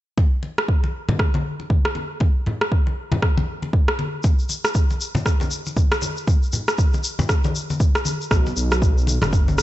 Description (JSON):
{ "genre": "afro house", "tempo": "118 BPM", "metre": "4/4", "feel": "swing 60% on 16ths", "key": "unclear", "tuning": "A4 = 441 Hz", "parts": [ { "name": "electronic kick drum", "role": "drums", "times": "0.2-9.4 s", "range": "none", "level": "-18 LUFS", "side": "equal", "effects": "small room ambience" }, { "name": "congas", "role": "percussion", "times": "0.2-9.6 s", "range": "none", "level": "-25 LUFS", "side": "left 2 dB", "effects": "none" }, { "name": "electronic rim click", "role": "drums", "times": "0.6-9.6 s", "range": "none", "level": "-25 LUFS", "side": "equal", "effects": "small room ambience" }, { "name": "tube shaker", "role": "percussion", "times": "4.2-9.6 s", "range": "none", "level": "-30 LUFS", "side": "left 3 dB", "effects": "none" }, { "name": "dark detuned saw bass", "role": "bass", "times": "8.3-9.6 s", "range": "F#1 to B1", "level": "-22 LUFS", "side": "equal", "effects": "sidechain pumping" } ], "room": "studio reverb", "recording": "nothing above 8.0 kHz", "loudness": "-18 LUFS", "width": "side -15 dB against mid", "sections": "0.2-8.3 A section; 8.3-9.6 B section", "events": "none", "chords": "none", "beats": "| 0.18 0.68 1.19 1.70 | 2.21 2.72 3.23 3.73 | 4.24 4.75 5.26 5.77 | 6.28 6.79 7.29 7.80 | 8.31 8.82 9.33" }